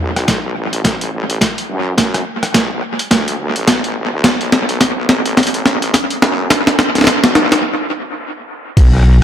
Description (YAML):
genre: glitch hop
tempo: 106 BPM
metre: 4/4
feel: swing 59% on 16ths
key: B minor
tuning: A4 = 440 Hz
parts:
  - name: wobble bass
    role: bass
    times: 0.0-9.2 s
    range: A1 to F#2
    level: -18 LUFS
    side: equal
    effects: chorus, overdrive, high-pass filter
  - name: boom bap sampler-style drum kit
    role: drums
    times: 0.2-9.1 s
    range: crash cymbal, hi-hat, rim click, snare drum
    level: -13 LUFS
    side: equal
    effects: dub echo
  - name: electronic kick drum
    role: drums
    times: 0.3-8.9 s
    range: none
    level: -15 LUFS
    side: equal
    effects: high-pass filter on kick
room: moderate plate reverb, RT60 1.6 s, digital ambience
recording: echo-heavy mix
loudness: -12 LUFS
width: side -10 dB against mid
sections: 0.0-8.8 A section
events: build-up 0.0-8.8; drum fill 0.0-7.6; stop 7.6-8.8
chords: none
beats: 0.28 0.85 1.41 | 1.98 2.54 3.11 3.68 | 4.24 4.81 5.37 5.94 | 6.51 7.07 7.64 8.20 | 8.77